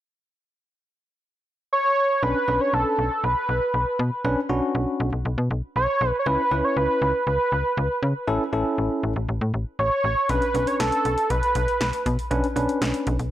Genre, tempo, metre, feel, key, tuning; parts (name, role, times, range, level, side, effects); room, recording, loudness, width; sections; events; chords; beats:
synth-pop; 119 BPM; 4/4; straight; B minor; A4 = 438 Hz
wide unison lead; melody; 1.7-12.1 s; A4 to C#5; -22 LUFS; right 1 dB; tape echo
bell-like tine electric piano; accompaniment; 2.2-13.2 s; C#4 to B4; -25 LUFS; equal; medium stereo tremolo
slap-like FM bass; bass; 2.2-13.3 s; A1 to C#3; -25 LUFS; equal
electro analog drum machine; drums; 10.3-13.3 s; hi-hat, kick drum, snare drum; -28 LUFS; equal
light reverb; dry, gritty hardware recording, transformer saturation; -21 LUFS; side -13 dB against mid
0.2-2.2 A section; 2.2-13.3 B section
0.2 N.C.; 2.2 Bmadd9; 6.3 C#m7; 8.3 A; 10.3 Bmadd9
| 0.21 0.72 1.22 1.72 | 2.23 2.73 3.24 3.74 | 4.25 4.75 5.25 5.76 | 6.26 6.77 7.27 7.78 | 8.28 8.78 9.29 9.79 | 10.30 10.80 11.30 11.81 | 12.31 12.82